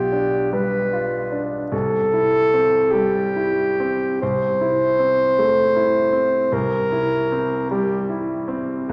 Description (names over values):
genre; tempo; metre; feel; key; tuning
classical, romantic duo for alto saxophone and grand piano; 46-53 BPM (dotted quarters); 6/8; rubato; C major; A4 = 440 Hz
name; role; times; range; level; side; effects
clear alto saxophone; melody; 0.0-8.9 s; G4 to C5; -21 LUFS; equal; none
clear concert grand piano; accompaniment; 0.0-8.9 s; B1 to F4; -26 LUFS; equal; none
room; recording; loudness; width
wet recital hall reverb, RT60 1.9 s; none; -20 LUFS; mono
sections
0.0-8.9 A section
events
none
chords
0.0 G7/B; 1.7 C; 4.2 Am/C; 6.5 C7